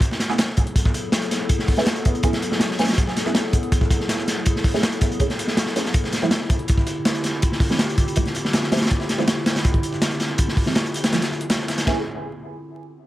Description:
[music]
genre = drum and bass, jungle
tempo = 162 BPM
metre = 4/4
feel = straight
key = unclear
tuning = A4 = 440 Hz
[part]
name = warbly tape-like pad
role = sustained chords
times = 0.0-12.0 s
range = D3 to A4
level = -27 LUFS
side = left 1 dB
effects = chorus, built-in reverb
[part]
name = breakbeat sampler-style drum kit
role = drums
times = 0.0-11.9 s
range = hi-hat, snare drum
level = -33 LUFS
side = equal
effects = high-pass filter on hats, high-pass filter on snare
[part]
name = crunchy breakbeat drum kit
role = drums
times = 0.0-12.0 s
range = hi-hat, kick drum, ride cymbal, snare drum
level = -20 LUFS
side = equal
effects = none
[part]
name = filtered dub chord stab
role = stabs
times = 0.3-12.0 s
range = F3 to G#4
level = -27 LUFS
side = right 2 dB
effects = phaser, ensemble chorus, dub echo
[sound]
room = light reverb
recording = vinyl crackle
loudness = -18 LUFS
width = side -15 dB against mid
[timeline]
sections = 0.0-11.9 A section; 11.9-13.1 B section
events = filter sweep on synth stab 0.0-11.9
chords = 0.0 F#m11; 5.9 Dm11; 11.9 Amaj7sus2

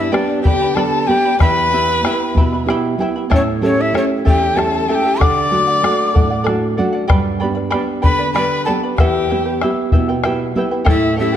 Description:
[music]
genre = andean folk, Andean ensemble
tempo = 63 BPM (dotted quarters)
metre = 6/8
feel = straight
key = E minor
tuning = A4 = 439 Hz
[part]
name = breathy mellow quena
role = melody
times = 0.0-11.4 s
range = C#5 to D6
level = -19 LUFS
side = equal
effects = none
[part]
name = clear violin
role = second line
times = 0.0-11.4 s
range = C#4 to D5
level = -21 LUFS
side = left 6 dB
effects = none
[part]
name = charango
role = accompaniment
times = 0.0-11.4 s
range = E4 to B5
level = -22 LUFS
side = right 2 dB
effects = none
[part]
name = nylon-string guitar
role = accompaniment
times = 0.0-11.4 s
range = E2 to G4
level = -19 LUFS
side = right 2 dB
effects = none
[part]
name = bombo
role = percussion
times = 0.1-11.4 s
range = none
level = -17 LUFS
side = left 1 dB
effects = none
[sound]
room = moderate concert hall reverb, RT60 2.4 s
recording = dark, warm production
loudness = -13 LUFS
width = side -10 dB against mid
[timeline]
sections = 0.0-11.4 A section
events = none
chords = 0.0 G; 1.4 Em; 3.3 A7; 5.2 D; 7.1 G; 9.0 Em

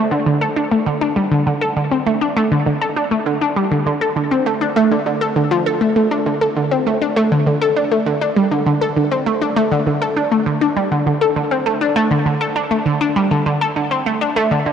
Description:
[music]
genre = ambient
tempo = 100 BPM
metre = 4/4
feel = straight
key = unclear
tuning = A4 = 441 Hz
[part]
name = analog pluck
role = solo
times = 0.0-14.7 s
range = D3 to A4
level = -15 LUFS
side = equal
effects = chorus, phaser, analog delay
[sound]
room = wet huge ambient reverb, RT60 8.1 s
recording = cassette tape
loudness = -15 LUFS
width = side -8 dB against mid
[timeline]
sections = 0.0-14.7 A section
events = none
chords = none

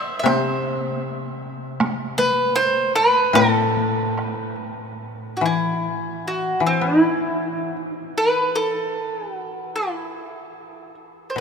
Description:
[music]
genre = japanese traditional, Japanese chamber music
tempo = 70-80 BPM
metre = 2/4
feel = rubato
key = A kumoi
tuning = A4 = 445 Hz
[part]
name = bowl-back mandolin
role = melody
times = 0.0-11.4 s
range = E4 to E5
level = -20 LUFS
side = right 1 dB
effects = none
[part]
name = koto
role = accompaniment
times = 0.2-8.9, 11.4 s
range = A2 to B3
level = -25 LUFS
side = left 5 dB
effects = none
[part]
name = taiko ensemble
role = percussion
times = 0.3-4.4 s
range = none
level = -27 LUFS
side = right 2 dB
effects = none
[sound]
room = wet cathedral reverb, RT60 5.5 s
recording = minimal, uncompressed stereo recording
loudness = -19 LUFS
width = side -6 dB against mid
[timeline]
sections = 0.0-5.0 A section; 5.0-11.4 B section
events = none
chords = none

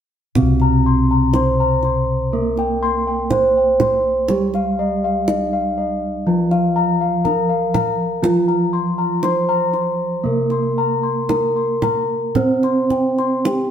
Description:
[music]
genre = Javanese gamelan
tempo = 60 BPM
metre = 4/4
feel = uneven beats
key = C slendro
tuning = A4 = 440 Hz
[part]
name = gamelan-type bronze metallophone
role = melody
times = 0.4-13.7 s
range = C4 to C5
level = -20 LUFS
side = right 2 dB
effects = none
[part]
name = gamelan-type bronze metallophone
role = accompaniment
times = 0.4-13.7 s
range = C3 to C4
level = -22 LUFS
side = right 1 dB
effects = none
[part]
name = gamelan-type bossed gongs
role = bass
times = 0.4-13.7 s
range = C2 to C5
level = -23 LUFS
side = equal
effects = none
[part]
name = kendang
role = percussion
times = 0.4-13.7 s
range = none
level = -23 LUFS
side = right 3 dB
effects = none
[part]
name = gamelan-type bossed gongs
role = arpeggios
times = 0.6-13.7 s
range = Eb5-45c to C6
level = -22 LUFS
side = left 6 dB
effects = none
[sound]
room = moderate stone room reverb, RT60 1.3 s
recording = band playing live in one room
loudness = -16 LUFS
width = side -9 dB against mid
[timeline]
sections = 0.4-13.7 A section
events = none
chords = none

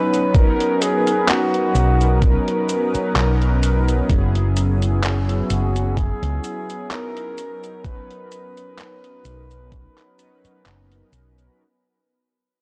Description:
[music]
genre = vaporwave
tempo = 64 BPM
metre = 4/4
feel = swing 55% on 16ths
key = B major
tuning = A4 = 444 Hz
[part]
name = mellow flugelhorn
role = melody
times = 0.0-11.1 s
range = F#4 to B4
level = -27 LUFS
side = equal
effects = tape echo
[part]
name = mellow synth brass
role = accompaniment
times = 0.0-11.6 s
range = F#3 to B4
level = -26 LUFS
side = equal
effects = lush chorus, tape echo
[part]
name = warbly tape-like pad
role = sustained chords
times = 0.0-11.6 s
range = B3 to E6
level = -35 LUFS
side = equal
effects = chorus, built-in reverb
[part]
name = detuned 8-bit digital drum machine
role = drums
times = 0.1-11.6 s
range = cabasa, handclaps, hi-hat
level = -28 LUFS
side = equal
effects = vintage 12-bit sampler grit, small room ambience
[part]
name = electronic kick drum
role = drums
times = 0.3-9.9 s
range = none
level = -20 LUFS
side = equal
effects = vintage 12-bit sampler grit, small room ambience
[part]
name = hollow-body short-scale fingered electric bass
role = bass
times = 1.7-11.5 s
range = F#1 to C#2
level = -21 LUFS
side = equal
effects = transformer saturation
[sound]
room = little or no reverb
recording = dry, gritty hardware recording, transformer saturation, cassette tape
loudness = -19 LUFS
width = mono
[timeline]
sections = 0.0-11.6 A section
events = fade-out 0.0-11.6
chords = 0.0 Bmaj7; 4.1 F#9sus4; 7.4 Bmaj7

